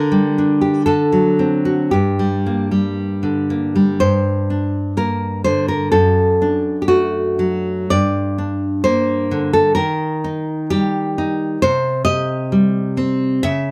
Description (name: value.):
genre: romantic piece for solo classical guitar.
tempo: 56-68 BPM.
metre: 2/4.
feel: rubato.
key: G minor.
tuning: A4 = 440 Hz.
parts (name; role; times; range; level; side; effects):
nylon-string guitar; solo; 0.0-13.7 s; F#2 to E5; -18 LUFS; equal; none.
room: moderate studio reverb, RT60 0.6 s.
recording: none.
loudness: -18 LUFS.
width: mono.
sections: 0.0-4.0 A section; 4.0-13.7 A section.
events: none.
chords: 0.0 Gm/D; 0.9 D7; 1.9 Gm; 5.9 D/F#; 7.9 Gm; 9.8 Eb; 11.6 Cm.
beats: 0.88 | 1.93 2.98 | 4.00 4.97 | 5.93 6.87 | 7.89 8.84 | 9.76 10.70 | 11.61 12.51 | 13.42.